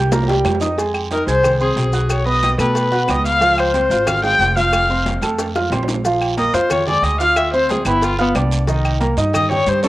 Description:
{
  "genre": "Afro-Cuban jazz",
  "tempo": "182 BPM",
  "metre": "4/4",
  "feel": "straight",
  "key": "F minor",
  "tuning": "A4 = 440 Hz",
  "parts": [
    { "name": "warm grand piano", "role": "accompaniment", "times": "0.0-9.9 s", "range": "Eb3 to Ab6", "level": "-20 LUFS", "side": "right 2 dB", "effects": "cassette tape" },
    { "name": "upright bass", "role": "bass", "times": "0.0-9.9 s", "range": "F1 to B2", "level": "-21 LUFS", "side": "equal", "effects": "none" },
    { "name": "congas", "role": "percussion", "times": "0.1-9.9 s", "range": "none", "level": "-30 LUFS", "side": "right 1 dB", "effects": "none" },
    { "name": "cowbell and bongos", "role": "percussion", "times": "0.1-9.8 s", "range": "none", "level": "-29 LUFS", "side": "left 3 dB", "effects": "none" },
    { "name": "guiro", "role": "percussion", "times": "0.1-9.9 s", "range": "none", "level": "-32 LUFS", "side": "right 4 dB", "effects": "none" },
    { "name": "maracas", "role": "percussion", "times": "0.1-9.9 s", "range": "none", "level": "-35 LUFS", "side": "left 5 dB", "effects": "none" },
    { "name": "timbales and agogo bells", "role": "percussion", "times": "0.1-9.8 s", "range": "none", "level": "-28 LUFS", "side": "right 4 dB", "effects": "none" },
    { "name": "claves", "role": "percussion", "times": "0.5-9.5 s", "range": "none", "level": "-29 LUFS", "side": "left 3 dB", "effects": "none" },
    { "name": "warm viola", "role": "second line", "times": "1.1-9.9 s", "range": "B3 to G5", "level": "-17 LUFS", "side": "left 2 dB", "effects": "cassette tape" }
  ],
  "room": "light reverb, small room ambience",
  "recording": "home recording on cassette",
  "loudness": "-14 LUFS",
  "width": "side -17 dB against mid",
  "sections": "0.8-9.9 A section",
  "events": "drum fill 0.0-0.8, 5.4-6.0; viola solo 0.0-9.9",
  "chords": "0.1 C5; 0.8 Fm7; 2.1 B9; 3.4 Dbmaj7; 4.7 F; 6.0 Bb5; 7.4 G7; 8.7 Cm7"
}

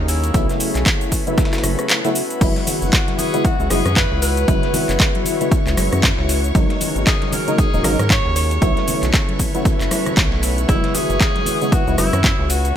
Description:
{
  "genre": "deep house",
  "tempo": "116 BPM",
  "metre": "4/4",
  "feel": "swing 58% on 16ths",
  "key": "F# minor",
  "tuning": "A4 = 438 Hz",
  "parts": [
    { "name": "warm tenor saxophone", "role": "melody", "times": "0.0-12.8 s", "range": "E4 to C#5", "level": "-25 LUFS", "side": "left 1 dB", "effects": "digital delay" },
    { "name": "airy breathy pad", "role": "sustained chords", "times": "0.0-12.7 s", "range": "F#3 to B4", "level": "-29 LUFS", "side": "left 1 dB", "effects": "chorus, vintage 12-bit sampler grit, sidechain pumping" },
    { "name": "rubbery square bass", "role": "bass", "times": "0.0-12.7 s", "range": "D#1 to G#2", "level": "-20 LUFS", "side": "equal", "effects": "sidechain pumping" },
    { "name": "deep dark ambient pad", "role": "texture", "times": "0.0-12.8 s", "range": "F#4 to E#5", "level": "-28 LUFS", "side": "left 2 dB", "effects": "chorus, built-in reverb, sidechain pumping" },
    { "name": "dusty soul sampler-style drum kit", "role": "drums", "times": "0.1-12.8 s", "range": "hi-hat, snare drum", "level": "-32 LUFS", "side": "equal", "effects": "none" },
    { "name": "house drum kit", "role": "drums", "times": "0.1-12.7 s", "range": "crash cymbal, handclaps, hi-hat, rim click, shaker", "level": "-22 LUFS", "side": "equal", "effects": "overdrive" },
    { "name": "percussive organ stab", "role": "stabs", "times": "0.3-12.1 s", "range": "C#3 to E4", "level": "-23 LUFS", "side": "equal", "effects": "ensemble chorus, cassette tape, sidechain pumping, digital delay" },
    { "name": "electronic kick drum", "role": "drums", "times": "0.3-12.4 s", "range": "none", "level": "-18 LUFS", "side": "equal", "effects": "overdrive" },
    { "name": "congas", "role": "percussion", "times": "2.4-12.2 s", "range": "none", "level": "-28 LUFS", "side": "left 3 dB", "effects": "none" },
    { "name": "string machine, violins", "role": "texture", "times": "2.4-12.8 s", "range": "C#5 to C#6", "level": "-32 LUFS", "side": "right 1 dB", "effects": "ensemble chorus, sidechain pumping" }
  ],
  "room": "little or no reverb",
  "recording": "none",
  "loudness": "-15 LUFS",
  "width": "side -10 dB against mid",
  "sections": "0.0-12.8 A section",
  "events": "none",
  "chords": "0.3 B9sus4; 2.4 F#9sus4; 6.5 G#9sus4; 8.6 B9sus4; 10.7 F#9sus4"
}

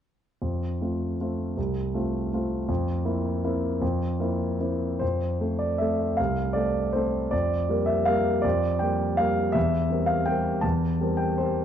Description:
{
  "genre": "classical, piano waltz",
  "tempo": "136-174 BPM",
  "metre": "3/4",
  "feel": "rubato",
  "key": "F major",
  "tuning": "A4 = 440 Hz",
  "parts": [
    { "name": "warm grand piano", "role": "solo", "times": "0.4-11.6 s", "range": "C2 to A5", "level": "-23 LUFS", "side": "equal", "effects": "none" }
  ],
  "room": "moderate recital hall reverb, RT60 1.6 s",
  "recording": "dark, warm production",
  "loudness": "-23 LUFS",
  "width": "side -9 dB against mid",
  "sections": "0.4-5.0 A section; 5.0-11.6 B section",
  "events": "none",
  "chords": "0.4 F; 2.7 C7/F; 5.0 F; 7.3 Gm7/F; 9.6 C7/E"
}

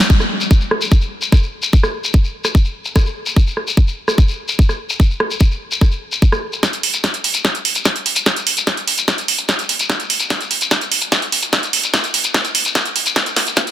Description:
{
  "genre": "trance",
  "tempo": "147 BPM",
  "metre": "4/4",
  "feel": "straight",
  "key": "none",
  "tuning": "none",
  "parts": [
    { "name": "techno drum kit", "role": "drums", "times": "0.0-13.7 s", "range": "hi-hat, rim click, snare drum", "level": "-17 LUFS", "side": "right 1 dB", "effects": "high-pass filter on hats, low-pass filter on hats, soft clipping on snare, high-pass filter on snare, low-pass filter on snare, high-pass filter on room, low-pass filter on room" },
    { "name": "shekere", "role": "percussion", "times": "0.0-13.7 s", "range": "none", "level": "-22 LUFS", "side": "left 4 dB", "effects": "none" },
    { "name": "electronic kick drum", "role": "drums", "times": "0.1-13.7 s", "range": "none", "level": "-12 LUFS", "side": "equal", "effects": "high-pass filter on kick" }
  ],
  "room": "light reverb, digital ambience",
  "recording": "dense, heavily limited modern master, high-pass filter",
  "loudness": "-14 LUFS",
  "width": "side -12 dB against mid",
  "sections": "0.1-6.6 A section; 6.6-13.7 B section",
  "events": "band accent 0.0; build-up 6.6-13.7; drum fill 6.6-13.7",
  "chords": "none"
}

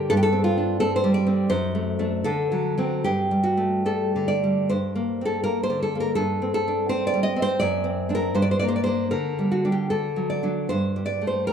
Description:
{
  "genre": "romantic piece for solo classical guitar",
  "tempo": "70-86 BPM",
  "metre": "2/4",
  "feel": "rubato",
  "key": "G minor",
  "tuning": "A4 = 438 Hz",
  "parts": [
    { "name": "nylon-string guitar", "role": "solo", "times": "0.0-11.5 s", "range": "F#2 to Eb5", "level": "-21 LUFS", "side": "equal", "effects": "none" }
  ],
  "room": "moderate recital hall reverb, RT60 1.5 s",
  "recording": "dark, warm production",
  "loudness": "-21 LUFS",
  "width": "side -7 dB against mid",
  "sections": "0.0-4.7 A section; 4.7-11.5 A section",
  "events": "none",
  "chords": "0.1 G9sus4; 1.5 D7/F#; 2.2 D7; 3.1 G5; 4.7 Gm; 6.2 Gsus24; 7.6 D7/F#; 8.3 Gm; 9.1 Gm/D; 9.9 D; 10.7 G5"
}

